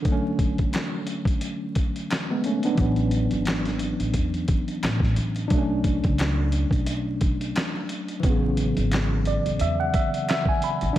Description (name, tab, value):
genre	lo-fi hip hop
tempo	88 BPM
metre	4/4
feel	swing 56% on 16ths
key	unclear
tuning	A4 = 444 Hz
part	tine electric piano	accompaniment	0.0-11.0 s	C#3 to B5	-26 LUFS	equal	overdrive, fast stereo tremolo, low-pass filter
part	dusty soul sampler-style drum kit	drums	0.0-11.0 s	handclaps, hi-hat, kick drum, snare drum	-26 LUFS	equal	vintage 12-bit sampler grit
part	finger snap	percussion	0.7-10.5 s	none	-41 LUFS	left 4 dB	none
part	upright bass	bass	2.8-11.0 s	G#1 to A2	-26 LUFS	equal	none
room	little or no reverb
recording	vinyl crackle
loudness	-22 LUFS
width	side -13 dB against mid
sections	0.0-11.0 A section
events	break 0.0-2.8; tine electric piano fill 8.9-11.0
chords	0.1 Dmaj7#11; 2.8 A6; 5.5 Bm7; 8.2 A6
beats	| 0.05 0.73 1.42 2.10 | 2.78 3.46 4.14 4.82 | 5.51 6.19 6.87 7.55 | 8.23 8.91 9.60 10.28 | 10.96